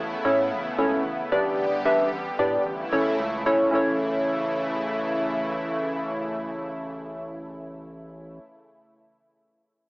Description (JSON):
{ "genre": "pop", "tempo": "112 BPM", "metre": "4/4", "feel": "straight", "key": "A mixolydian", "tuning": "A4 = 440 Hz", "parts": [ { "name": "lush unison pad", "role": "sustained chords", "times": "0.0-8.4 s", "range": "C#3 to G4", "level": "-28 LUFS", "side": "equal", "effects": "chorus, cassette tape" }, { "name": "rubbery square bass", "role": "bass", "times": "0.0-8.4 s", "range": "G1 to A2", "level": "-40 LUFS", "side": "equal", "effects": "none" }, { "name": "warm analog keys", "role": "accompaniment", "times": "0.2-8.4 s", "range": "C#4 to E5", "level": "-24 LUFS", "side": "equal", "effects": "chorus, cassette tape" } ], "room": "wet booth ambience, RT60 0.2 s", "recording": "home recording on cassette, small speaker sound", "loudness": "-22 LUFS", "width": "side -25 dB against mid", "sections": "0.0-3.7 A section; 3.7-8.0 B section", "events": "none", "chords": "0.0 Aadd9; 1.3 G/A; 2.7 A" }